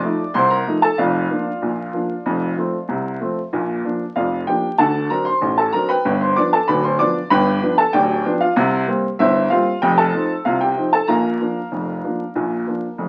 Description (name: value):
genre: ragtime piano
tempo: 95 BPM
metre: 2/4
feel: straight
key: Bb major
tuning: A4 = 441 Hz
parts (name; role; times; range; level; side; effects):
- clear upright piano; solo; 0.0-13.1 s; D1 to D6; -19 LUFS; equal; none
room: moderate studio reverb, RT60 0.8 s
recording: very old 78 rpm record, vinyl crackle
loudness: -19 LUFS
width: mono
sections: 0.0-13.1 A section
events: none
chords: 0.0 F7; 1.0 Bb/F; 2.3 F; 3.5 Bb; 4.8 D7; 6.1 G7; 8.6 C7; 9.8 F7; 11.1 Bb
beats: 0.35 | 0.98 1.62 | 2.26 2.90 | 3.53 4.16 | 4.79 5.42 | 6.05 6.68 | 7.31 7.94 | 8.57 9.20 | 9.82 10.45 | 11.09 11.72 | 12.36 12.99